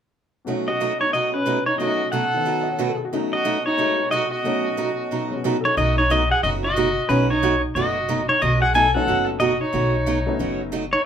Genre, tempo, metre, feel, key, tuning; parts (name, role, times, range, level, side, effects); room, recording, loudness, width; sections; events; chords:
country, western swing; 182 BPM; 4/4; swing 63% on 8ths; B mixolydian; A4 = 440 Hz
honky-tonk upright piano; accompaniment; 0.4-5.8, 8.9-10.7 s; B2 to D#5; -28 LUFS; left 3 dB
picked steel-string acoustic guitar; accompaniment; 0.5-10.8 s; B2 to F#4; -26 LUFS; right 3 dB
pedal steel guitar; melody; 0.7-11.0 s; B4 to G#5; -21 LUFS; equal
warm fiddle; second line; 0.7-11.0 s; C#4 to A4; -27 LUFS; right 1 dB
upright bass; bass; 5.8-10.9 s; F#1 to B1; -25 LUFS; equal
wet small room reverb, RT60 0.5 s; band playing live in one room; -18 LUFS; side -8 dB against mid
0.5-5.8 A section; 5.8-11.1 B section
0.5 B9